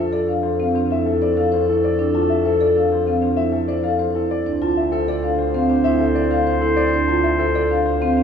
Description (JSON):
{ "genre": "classical, minimalist pattern music", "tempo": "97 BPM", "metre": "4/4", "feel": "straight", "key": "unclear", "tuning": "A4 = 440 Hz", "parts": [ { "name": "warm concert grand piano", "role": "melody", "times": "0.0-8.2 s", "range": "A4 to A5", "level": "-22 LUFS", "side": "left 6 dB", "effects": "none" }, { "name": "warm clarinet", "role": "second line", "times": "0.0-8.2 s", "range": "A4 to C5", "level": "-24 LUFS", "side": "left 4 dB", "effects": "none" }, { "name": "marimba with soft mallets", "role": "arpeggios", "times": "0.0-8.2 s", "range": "C4 to C5", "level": "-20 LUFS", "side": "right 3 dB", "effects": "none" }, { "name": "rich double bass", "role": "bass", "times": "0.0-8.2 s", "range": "D2 to F2", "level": "-25 LUFS", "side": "right 2 dB", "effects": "none" } ], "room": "wet scoring stage reverb, RT60 1.8 s", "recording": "recorded in a church or concert hall, small room ambience", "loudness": "-16 LUFS", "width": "side -7 dB against mid", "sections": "0.0-8.2 A section", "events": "none", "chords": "0.0 Fmaj7; 4.5 Dm7" }